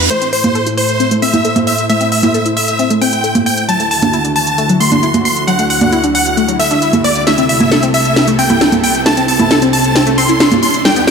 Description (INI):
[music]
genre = uplifting trance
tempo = 134 BPM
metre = 4/4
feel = straight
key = A dorian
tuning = A4 = 440 Hz
[part]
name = big supersaw lead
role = melody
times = 0.0-11.1 s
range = C5 to C6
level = -16 LUFS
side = equal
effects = ping-pong delay
[part]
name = analog pluck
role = second line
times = 0.0-11.1 s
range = C5 to C6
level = -22 LUFS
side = equal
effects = none
[part]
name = supersaw pad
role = sustained chords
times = 0.0-11.1 s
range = C2 to C5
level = -18 LUFS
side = equal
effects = none
[part]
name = reverse cymbal and riser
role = sound effects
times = 0.0-11.1 s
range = none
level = -21 LUFS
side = right 2 dB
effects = none
[part]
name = analog pluck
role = arpeggios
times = 0.1-11.0 s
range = F#3 to A4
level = -18 LUFS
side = left 3 dB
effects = chorus, ping-pong delay
[part]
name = techno drum kit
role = drums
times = 0.1-11.1 s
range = congas, hi-hat, snare drum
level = -14 LUFS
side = right 2 dB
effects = overdrive
[sound]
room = moderate lush hall reverb, RT60 2.0 s, digital ambience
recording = none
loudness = -10 LUFS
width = side -6 dB against mid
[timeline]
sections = 0.1-11.1 A section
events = build-up 0.1-11.1; riser 0.1-11.1; filter sweep on synth arpeggio sound 0.1-11.1; drum fill 7.3-11.1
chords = 0.1 Am; 3.7 Dadd9; 7.3 Am/C